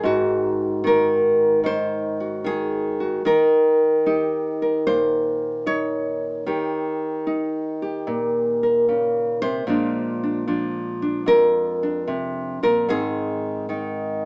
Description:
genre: solo jazz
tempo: 75 BPM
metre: 4/4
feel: swing 69% on 8ths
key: Eb mixolydian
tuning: A4 = 445 Hz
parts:
  - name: nylon-string guitar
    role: solo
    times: 0.0-14.3 s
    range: F2 to Db5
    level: -22 LUFS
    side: equal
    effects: none
room: moderate studio reverb, RT60 0.5 s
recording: heard from further back in the room, small speaker sound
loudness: -22 LUFS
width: mono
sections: 0.0-14.3 A section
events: none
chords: 0.0 Ab7; 3.2 Eb7; 9.7 Bb7; 12.9 Ab

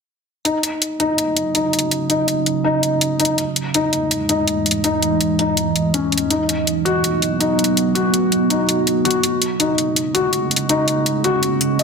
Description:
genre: half-time drum and bass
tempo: 164 BPM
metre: 4/4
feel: swing 58% on 16ths, half-time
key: Eb phrygian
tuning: A4 = 440 Hz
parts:
  - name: felt-muted upright piano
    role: arpeggios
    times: 0.4-11.8 s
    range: Db4 to Eb5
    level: -19 LUFS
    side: left 2 dB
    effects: low-pass filter, ping-pong delay
  - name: deep dark ambient pad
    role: sustained chords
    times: 1.4-11.8 s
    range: E3 to Eb5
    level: -20 LUFS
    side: right 3 dB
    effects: chorus, built-in reverb
  - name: electronic hi-hat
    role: drums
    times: 0.5-11.8 s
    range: none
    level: -19 LUFS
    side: equal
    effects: overdrive
room: moderate digital room reverb, RT60 0.9 s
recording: dense, heavily limited modern master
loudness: -16 LUFS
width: side -5 dB against mid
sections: 0.5-11.8 A section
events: filter sweep on ambient pad 0.5-11.8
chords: 0.5 Ebm7; 3.4 Emaj7; 6.3 B; 9.2 Db5

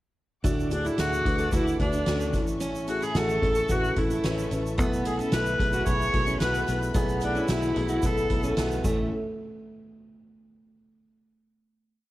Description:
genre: piano-driven pop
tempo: 111 BPM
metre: 4/4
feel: straight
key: A major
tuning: A4 = 441 Hz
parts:
  - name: felt-muted upright piano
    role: accompaniment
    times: 0.4-9.1 s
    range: A1 to B4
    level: -30 LUFS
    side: left 2 dB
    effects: cassette tape, plate reverb
  - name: warm studio string section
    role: sustained chords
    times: 0.4-9.1 s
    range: C#4 to D6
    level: -42 LUFS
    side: left 1 dB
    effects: cassette tape, plate reverb
  - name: picked steel-string acoustic guitar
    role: riff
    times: 0.4-9.1 s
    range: A3 to A4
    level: -34 LUFS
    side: right 3 dB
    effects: cassette tape
  - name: fingered electric bass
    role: bass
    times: 0.4-9.1 s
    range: A1 to D2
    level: -31 LUFS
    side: equal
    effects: none
  - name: soft-mallet drum kit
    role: drums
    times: 0.4-9.0 s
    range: crash cymbal, hi-hat, kick drum, snare drum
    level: -29 LUFS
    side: equal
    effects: cassette tape
  - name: egg shaker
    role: percussion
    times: 0.5-9.1 s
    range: none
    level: -45 LUFS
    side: right 5 dB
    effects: none
  - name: rich viola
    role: melody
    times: 0.7-8.6 s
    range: D4 to C#5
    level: -28 LUFS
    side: equal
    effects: cassette tape, plate reverb
room: light reverb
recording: home recording on cassette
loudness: -23 LUFS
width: side -16 dB against mid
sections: 0.4-9.1 pre-chorus; 9.1-11.3 final hit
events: none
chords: 0.4 D; 2.3 A; 4.8 Esus4/B; 8.8 A; 9.1 N.C.

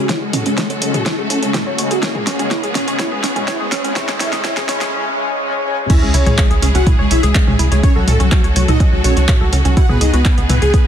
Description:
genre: melodic techno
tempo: 124 BPM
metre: 4/4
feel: straight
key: C# minor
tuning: A4 = 440 Hz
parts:
  - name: mellow synth brass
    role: melody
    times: 0.0-10.8 s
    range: F#3 to G#4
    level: -22 LUFS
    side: equal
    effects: chorus, sidechain pumping, ping-pong delay
  - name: clear studio string section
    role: sustained chords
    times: 0.0-10.9 s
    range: C#3 to A4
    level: -26 LUFS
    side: equal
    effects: sidechain pumping
  - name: analog pluck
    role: arpeggios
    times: 0.0-10.8 s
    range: B3 to C#5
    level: -24 LUFS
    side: equal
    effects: chorus, sidechain pumping, tape echo
  - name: tight sequencer bass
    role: bass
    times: 0.0-10.7 s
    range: B1 to C#2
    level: -16 LUFS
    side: equal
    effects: sidechain pumping, high-pass filter
  - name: riser, swell and sub drop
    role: sound effects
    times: 0.0-7.8 s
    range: none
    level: -26 LUFS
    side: right 1 dB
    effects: none
  - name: deep house drum kit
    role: drums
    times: 0.1-10.8 s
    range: crash cymbal, handclaps, hi-hat, snare drum, toms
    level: -21 LUFS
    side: equal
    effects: small room ambience
  - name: electronic kick drum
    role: drums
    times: 0.1-10.8 s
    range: none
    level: -14 LUFS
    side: equal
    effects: high-pass filter on kick, small room ambience
  - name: brassy analog pad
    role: stabs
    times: 0.5-5.8 s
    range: C#3 to C#4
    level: -23 LUFS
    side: left 3 dB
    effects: chorus, sidechain pumping, tape echo
  - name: soft supersaw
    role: second line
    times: 5.9-10.8 s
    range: F#4 to G#5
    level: -24 LUFS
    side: right 2 dB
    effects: sidechain pumping, tape echo
room: light reverb, digital ambience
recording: dense, heavily limited modern master, high-pass filter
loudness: -13 LUFS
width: side -9 dB against mid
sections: 0.0-5.9 A section; 5.9-10.9 B section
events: build-up 0.0-5.9; drum fill 0.0-4.9; riser 0.0-4.9; filter sweep on synth arpeggio sound 0.0-5.9; filter sweep on analog polysynth 0.0-5.9; filter sweep on analog synth pad 0.0-5.9; swell 4.9-5.9; drop 5.9-10.9; impact 5.9-7.8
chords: 0.1 F#m/C#; 2.0 Eadd9/C#; 4.0 A/C#; 5.9 C#m; 7.8 F#m/C#; 9.8 Eadd9/C#

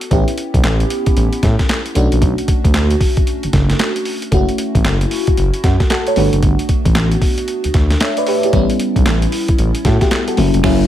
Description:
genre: R&B, new jack swing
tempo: 114 BPM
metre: 4/4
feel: swing 63% on 16ths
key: unclear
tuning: A4 = 444 Hz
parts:
  - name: FM electric piano with soft pad layer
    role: accompaniment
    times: 0.0-10.9 s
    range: F#3 to E5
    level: -18 LUFS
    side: equal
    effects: chorus, phaser
  - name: boom bap sampler-style drum kit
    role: drums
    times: 0.0-10.8 s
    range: crash cymbal, handclaps, hi-hat, kick drum, snare drum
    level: -16 LUFS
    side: equal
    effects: none
  - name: smooth gliding synth bass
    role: bass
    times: 0.1-10.8 s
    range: E#1 to A2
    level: -16 LUFS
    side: equal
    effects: none
room: little or no reverb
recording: none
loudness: -13 LUFS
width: side -12 dB against mid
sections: 0.0-10.9 A section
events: band accent 10.6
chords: 0.1 A7; 2.0 Bm9 (rootless); 4.3 F#m7; 6.2 Gmaj9; 8.5 A7

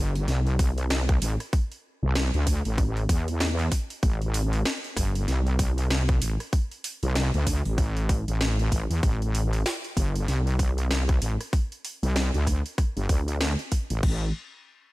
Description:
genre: glitch hop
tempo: 96 BPM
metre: 4/4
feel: swing 59% on 16ths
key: A minor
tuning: A4 = 435 Hz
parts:
  - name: wobble bass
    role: bass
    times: 0.0-14.3 s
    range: G1 to E2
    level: -24 LUFS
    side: equal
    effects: chorus
  - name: drum and bass drum kit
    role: drums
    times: 0.2-14.2 s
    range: crash cymbal, hi-hat, rim click, snare drum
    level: -32 LUFS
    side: equal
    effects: overdrive
  - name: electronic kick drum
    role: drums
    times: 0.6-14.2 s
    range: none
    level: -24 LUFS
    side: equal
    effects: overdrive
room: digital ambience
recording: none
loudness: -23 LUFS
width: side -19 dB against mid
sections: 0.0-14.0 A section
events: drop 0.0-14.0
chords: none

